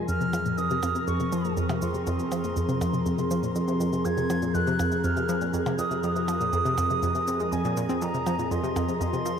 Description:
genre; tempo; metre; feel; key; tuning
ambient, sequencer-driven space music; 121 BPM; 4/4; straight; F minor; A4 = 441 Hz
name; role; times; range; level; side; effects
silver concert flute; melody; 0.0-9.4 s; Ab5 to Ab6; -30 LUFS; right 1 dB; shimmer reverb, ping-pong delay
sweeping resonant pad; sustained chords; 0.0-9.4 s; F2 to Eb5; -28 LUFS; left 1 dB; chorus, shimmer reverb
analog pluck; riff; 0.0-9.3 s; F2 to C4; -28 LUFS; equal; chorus, shimmer reverb, ping-pong delay
wind-like tuned noise texture; texture; 0.0-9.4 s; Bb4; -38 LUFS; right 7 dB; built-in reverb, shimmer reverb
cabasa and percussion blips; percussion; 0.1-9.4 s; none; -41 LUFS; right 1 dB; ping-pong delay
room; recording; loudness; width
wet huge ambient reverb, RT60 7.0 s; none; -24 LUFS; side -7 dB against mid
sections
0.0-9.4 A section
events
none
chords
0.0 Fm

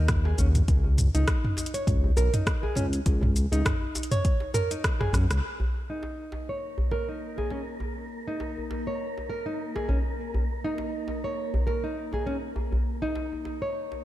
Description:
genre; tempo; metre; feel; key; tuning
organic downtempo; 101 BPM; 4/4; swing 56% on 16ths; unclear; A4 = 439 Hz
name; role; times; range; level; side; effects
nylon-string guitar; arpeggios; 0.0-14.0 s; Db4 to Db5; -32 LUFS; right 1 dB; low-pass filter, tape echo
smooth synth bass; bass; 0.0-5.4 s; Cb2 to Gb2; -24 LUFS; equal; sidechain pumping
deep house drum kit; drums; 0.1-5.4 s; hi-hat, rim click, shaker, toms; -29 LUFS; equal; none
electronic kick drum; drums; 0.1-5.0 s; none; -26 LUFS; equal; none
djembe; percussion; 0.3-14.0 s; none; -30 LUFS; equal; none
wind-like tuned noise texture; texture; 6.5-14.0 s; Bb3 to Bb4; -38 LUFS; left 2 dB; built-in reverb
room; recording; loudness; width
light reverb; dark, warm production; -25 LUFS; side -14 dB against mid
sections
0.0-5.4 A section; 5.4-14.0 B section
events
drum fill 5.0-5.4; band accent 5.3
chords
0.0 Eb5; 0.7 N.C.; 5.4 Eb5

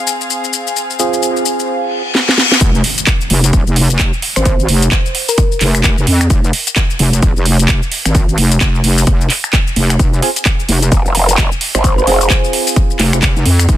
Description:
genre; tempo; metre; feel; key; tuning
bass house; 130 BPM; 4/4; swing 60% on 16ths; F minor; A4 = 439 Hz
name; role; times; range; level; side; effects
warm studio string section; texture; 0.0-1.7 s; C4 to F5; -21 LUFS; left 1 dB; sidechain pumping
house drum kit; drums; 0.1-13.8 s; finger snaps, handclaps, hi-hat, shaker, snare drum; -16 LUFS; equal; none
percussive organ stab; stabs; 1.0-2.0, 10.2-13.2 s; C4 to Ab4; -18 LUFS; right 2 dB; wide subtle chorus, sidechain pumping, dub echo
reverse cymbal and impact; sound effects; 1.9-4.5 s; none; -18 LUFS; left 4 dB; none
wobble bass; bass; 2.6-13.8 s; Eb1 to F2; -12 LUFS; equal; chorus, overdrive, sidechain pumping
electronic kick drum; drums; 2.6-13.8 s; none; -13 LUFS; equal; none
thumb-piano-like synth pluck; melody; 4.4-5.7, 11.7-12.3 s; Bb4 to C5; -20 LUFS; right 1 dB; chorus, dub echo
growl bass; bass; 10.9-12.3 s; Eb1 to Ab1; -13 LUFS; equal; chorus, overdrive, sidechain pumping
room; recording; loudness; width
little or no reverb; dense, heavily limited modern master; -10 LUFS; side -13 dB against mid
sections
0.0-2.6 A section; 2.6-13.8 B section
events
reverse cymbal 1.9-2.6; drum fill 2.1-2.6; drop 2.6-13.8; impact 2.6-4.5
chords
0.0 Fm

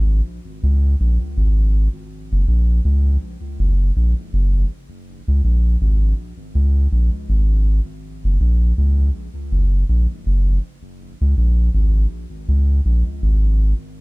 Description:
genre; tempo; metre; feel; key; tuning
reggae; 81 BPM; 4/4; swing 57% on 16ths; unclear; A4 = 440 Hz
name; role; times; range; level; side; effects
soft dub sub bass; solo; 0.0-13.7 s; Gb1 to Db2; -16 LUFS; equal; tape echo
room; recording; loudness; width
little or no reverb; echo-heavy mix; -16 LUFS; side -28 dB against mid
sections
0.0-5.1 A section; 5.1-14.0 B section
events
none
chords
none

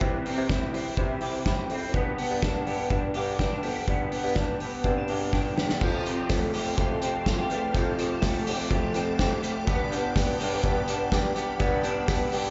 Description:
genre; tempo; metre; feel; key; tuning
jangly indie pop; 124 BPM; 4/4; straight; unclear; A4 = 440 Hz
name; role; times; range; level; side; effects
electric guitar through a small old amp; accompaniment; 0.0-12.5 s; G2 to G4; -37 LUFS; equal; subtle chorus, slapback echo
electric guitar through a small old amp; arpeggios; 0.0-12.5 s; E3 to G4; -32 LUFS; equal; ensemble chorus, digital delay, slapback echo
mellow bassoon; bass; 0.0-12.5 s; E2 to C3; -34 LUFS; equal; none
loose indie drum kit; drums; 0.0-12.4 s; crash cymbal, hi-hat, kick drum, snare drum; -31 LUFS; equal; none
phased string machine; sustained chords; 5.8-12.5 s; G4 to E6; -42 LUFS; equal; ensemble chorus, phaser
tambourine; percussion; 5.8-12.4 s; none; -46 LUFS; equal; none
room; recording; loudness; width
light reverb, small room reverb; live gig heard through the venue's PA, club reverb, nothing above 7.8 kHz; -27 LUFS; mono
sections
0.0-5.8 A section; 5.8-12.5 B section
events
drum fill 5.3-5.8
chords
0.0 C; 1.9 G; 5.8 Fadd9; 9.7 G

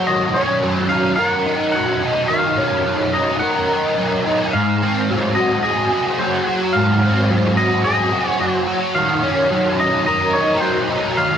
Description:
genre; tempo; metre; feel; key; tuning
rock; 108 BPM; 4/4; straight; Ab mixolydian; A4 = 440 Hz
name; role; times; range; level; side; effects
twangy electric guitar; melody; 0.0-11.4 s; C5 to Gb5; -21 LUFS; left 1 dB; tape echo
overdriven electric guitar; riff; 0.0-11.4 s; Ab2 to Bb4; -16 LUFS; equal; ensemble chorus, cassette tape
room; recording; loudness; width
light reverb; home recording on cassette; -15 LUFS; side -8 dB against mid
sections
0.0-4.5 A section; 4.5-11.4 A section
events
none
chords
0.1 Ebm7; 4.5 Ab7; 9.0 Ebm7

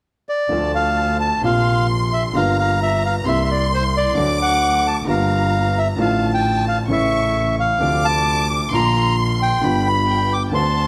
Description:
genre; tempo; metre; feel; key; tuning
tango; 132 BPM; 4/4; rubato; D minor; A4 = 439 Hz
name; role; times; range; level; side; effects
bandoneon; melody; 0.3-10.9 s; C5 to D6; -22 LUFS; equal; none
warm studio violin section; second line; 0.5-10.9 s; G5 to D6; -27 LUFS; equal; none
warm grand piano; accompaniment; 0.5-10.9 s; G1 to F#4; -24 LUFS; equal; none
clear double bass; bass; 0.5-10.9 s; G1 to D2; -25 LUFS; equal; none
room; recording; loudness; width
light reverb; none; -18 LUFS; mono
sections
0.5-10.9 A section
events
none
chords
0.0 N.C.; 0.5 Dm; 1.4 Bbsus2; 2.4 Gm7; 3.3 C7; 4.2 D; 5.1 Gm7; 6.0 Dm/A; 6.9 A; 7.8 Dm7; 8.7 Bb; 9.6 G7

